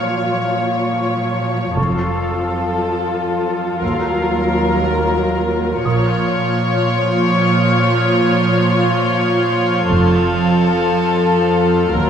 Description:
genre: cinematic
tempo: 59 BPM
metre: 4/4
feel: straight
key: Bb harmonic minor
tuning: A4 = 441 Hz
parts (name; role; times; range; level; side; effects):
- rich studio violin section; melody; 0.0-12.1 s; A4 to Db5; -20 LUFS; left 4 dB; none
- warm studio viola section; accompaniment; 0.0-12.1 s; F3 to F4; -19 LUFS; right 1 dB; none
- bubbling stepped-filter texture; sustained chords; 0.0-12.1 s; F4 to F5; -23 LUFS; left 2 dB; chorus, built-in reverb
- warm studio cello section; bass; 0.0-12.1 s; Eb2 to Bb2; -20 LUFS; right 2 dB; none
- warm concert grand piano; texture; 0.0-9.9 s; Bb4 to Eb6; -31 LUFS; left 2 dB; none
- dark studio double bass section; bass; 1.8-12.1 s; F1 to Eb2; -22 LUFS; right 2 dB; none
- warm studio violin section; texture; 5.9-12.1 s; F6 to Ab6; -29 LUFS; right 1 dB; none
room: wet scoring stage reverb, RT60 1.8 s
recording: dark, warm production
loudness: -14 LUFS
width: side -8 dB against mid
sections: 0.0-12.1 A section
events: none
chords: 0.0 Bbm; 1.8 F; 3.8 Ebmadd9; 5.8 Bbm; 9.9 F

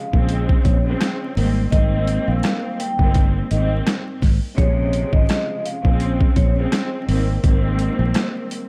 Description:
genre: hip hop, boom-bap hip-hop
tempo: 84 BPM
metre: 4/4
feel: swing 54% on 16ths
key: unclear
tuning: A4 = 442 Hz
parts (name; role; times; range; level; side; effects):
- vibraphone with medium mallets; melody; 0.0-6.5 s; Db5 to G5; -30 LUFS; equal; high-pass filter, low-pass filter, delay
- warm studio string section; accompaniment; 0.0-8.6 s; Ab2 to C4; -27 LUFS; equal; cassette tape, high-pass filter, low-pass filter
- fingered electric bass; bass; 0.1-8.1 s; G1 to Bb1; -22 LUFS; equal; none
- boom bap sampler-style drum kit; drums; 0.1-8.7 s; hi-hat, kick drum, rim click, snare drum; -21 LUFS; equal; none
room: small room ambience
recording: dark, warm production, vinyl crackle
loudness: -19 LUFS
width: mono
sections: 0.0-8.7 A section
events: none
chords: 0.0 Bbm9; 1.4 Abmaj9; 4.6 Bbm9; 7.1 Abmaj9

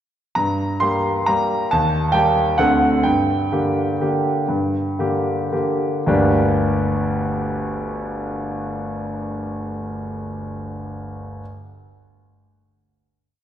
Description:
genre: classical, piano waltz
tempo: 107-146 BPM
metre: 3/4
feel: rubato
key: G minor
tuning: A4 = 440 Hz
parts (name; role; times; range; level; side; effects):
- clear concert grand piano; solo; 0.4-11.4 s; G1 to C6; -18 LUFS; equal; none
room: wet concert hall reverb, RT60 2.1 s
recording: recorded in a church or concert hall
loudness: -18 LUFS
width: side -10 dB against mid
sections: 0.4-6.1 A section; 6.1-9.2 final chord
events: slowing down 2.3-6.1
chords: 0.4 Gm; 1.7 Eb; 2.6 D7; 3.0 Gm

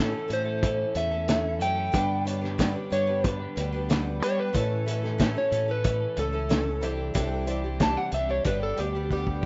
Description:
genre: folk rock and heartland rock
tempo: 92 BPM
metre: 4/4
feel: straight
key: A mixolydian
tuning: A4 = 439 Hz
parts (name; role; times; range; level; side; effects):
- electric slide guitar; melody; 0.0-9.5 s; G4 to A5; -31 LUFS; equal; none
- dark upright piano; accompaniment; 0.0-9.5 s; C#4 to D5; -42 LUFS; equal; none
- picked twelve-string acoustic guitar; accompaniment; 0.0-9.5 s; G2 to B4; -38 LUFS; equal; none
- twelve-string electric guitar; riff; 0.0-9.5 s; G2 to A4; -39 LUFS; equal; none
- fingered electric bass; bass; 0.0-9.5 s; G1 to G3; -33 LUFS; equal; none
- cloth-damped thuddy drum kit; drums; 0.3-9.5 s; hi-hat, kick drum, snare drum; -30 LUFS; equal; none
room: light reverb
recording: rough home demo mix, nothing above 7.7 kHz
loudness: -27 LUFS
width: mono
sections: 0.0-9.5 A section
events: electric slide guitar solo 0.0-9.5; drum fill 9.1-9.5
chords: 0.0 A; 1.9 G; 4.5 A; 6.8 Cadd9; 8.5 G

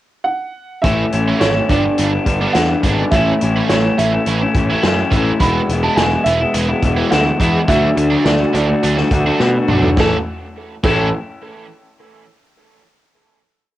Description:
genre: indie rock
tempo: 105 BPM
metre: 4/4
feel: straight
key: A major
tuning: A4 = 441 Hz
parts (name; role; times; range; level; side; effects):
- dark upright piano; melody; 0.2-11.1 s; A4 to B5; -21 LUFS; right 3 dB; none
- cranked stack guitar; riff; 0.8-11.1 s; A2 to A4; -23 LUFS; right 4 dB; overdrive, analog chorus, cassette tape
- electric guitar through a small old amp; riff; 0.8-11.1 s; G2 to F#4; -18 LUFS; left 3 dB; spring reverb, cassette tape
- fuzz picked electric bass; bass; 0.8-11.1 s; E1 to B2; -19 LUFS; equal; overdrive
- vintage drum kit; drums; 0.8-11.0 s; crash cymbal, hi-hat, kick drum, snare drum, toms; -19 LUFS; equal; cassette tape
room: light reverb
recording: home recording on cassette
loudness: -13 LUFS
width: side -14 dB against mid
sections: 0.0-0.8 pickup bar; 0.8-10.0 verse; 10.0-12.3 final chord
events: drum fill 9.4-10.0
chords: 0.0 N.C.; 0.8 A; 1.7 G; 3.1 A; 5.4 E; 7.7 D; 10.0 A

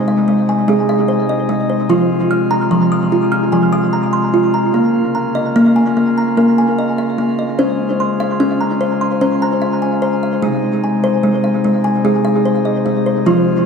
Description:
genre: world meditative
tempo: 148 BPM (eighths)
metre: 7/8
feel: straight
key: Ab major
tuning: A4 = 439 Hz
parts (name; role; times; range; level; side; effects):
- pipe organ, sparkling flutes; sustained chords; 0.0-13.7 s; C3 to F4; -18 LUFS; left 2 dB; none
- kalimba; arpeggios; 0.0-13.7 s; F3 to F6; -14 LUFS; equal; diffuse ambient delay
room: wet church reverb, RT60 3.9 s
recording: none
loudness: -13 LUFS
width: side -6 dB against mid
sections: 0.0-13.7 A section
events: none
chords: 0.0 Ab; 1.9 Fm; 4.7 Bbm; 7.6 Db; 10.4 Ab

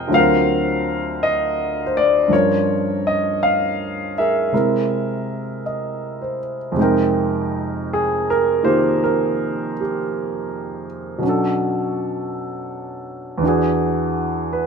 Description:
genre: jazz ballad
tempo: 54 BPM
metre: 4/4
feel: swing 68% on 8ths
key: F minor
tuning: A4 = 440 Hz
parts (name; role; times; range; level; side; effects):
- warm concert grand piano; solo; 0.0-14.7 s; D2 to G5; -18 LUFS; equal; none
room: moderate plate reverb, RT60 3.1 s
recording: minimal, uncompressed stereo recording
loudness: -17 LUFS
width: side -5 dB against mid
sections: 0.0-6.8 A section; 6.8-14.7 B section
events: none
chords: 0.1 D7alt; 2.3 Gm7b5; 4.5 Caug7; 6.8 Fm11; 11.2 Bm7; 13.4 E9

